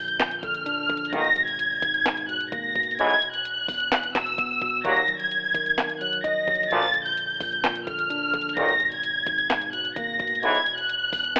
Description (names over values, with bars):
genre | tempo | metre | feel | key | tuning
hip hop, trap | 129 BPM | 4/4 | half-time | unclear | A4 = 439 Hz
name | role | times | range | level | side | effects
warm studio violin section | melody | 0.0-11.4 s | E6 to Bb6 | -26 LUFS | equal | none
mellow tine electric piano | accompaniment | 0.0-11.4 s | E2 to Eb5 | -38 LUFS | equal | none
long sustained 808-style bass | bass | 0.0-11.4 s | Eb1 to Bb1 | -49 LUFS | equal | none
trap drum kit | drums | 0.1-11.4 s | handclaps, hi-hat, kick drum, snare drum | -30 LUFS | equal | none
clear brass ensemble | stabs | 1.1-10.6 s | B1 to Gb3 | -27 LUFS | equal | none
room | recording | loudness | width
moderate recital hall reverb, RT60 1.4 s, digital ambience | telephone sound | -24 LUFS | mono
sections
0.0-11.4 A section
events
none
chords
0.0 Bb; 1.1 Abmadd9; 3.0 E5; 4.8 Ebm; 6.7 Bb; 8.6 Abmadd9; 10.4 E